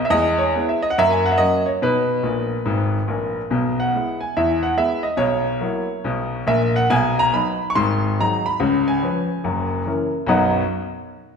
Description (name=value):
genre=jazz, stride piano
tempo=141 BPM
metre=4/4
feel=swing 65% on 8ths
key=B major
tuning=A4 = 440 Hz
part: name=clear grand piano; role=solo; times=0.0-10.6 s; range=F#1 to C#6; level=-18 LUFS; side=equal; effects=none
room=wet recital hall reverb, RT60 1.5 s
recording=recorded in a church or concert hall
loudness=-18 LUFS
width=side -6 dB against mid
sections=0.0-3.5 A section; 3.5-10.3 B section; 10.3-11.4 C section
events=grand piano fill 2.2-3.5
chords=0.1 E; 0.9 F#; 1.8 B; 3.5 E/B; 5.2 F#7/B; 6.9 B; 7.7 G#7; 8.6 C#7; 9.4 F#7; 10.3 B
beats=| 0.10 0.52 0.95 1.37 | 1.80 2.22 2.65 3.07 | 3.50 3.92 4.35 4.77 | 5.20 5.62 6.05 6.47 | 6.90 7.32 7.75 8.17 | 8.60 9.02 9.45 9.87 | 10.29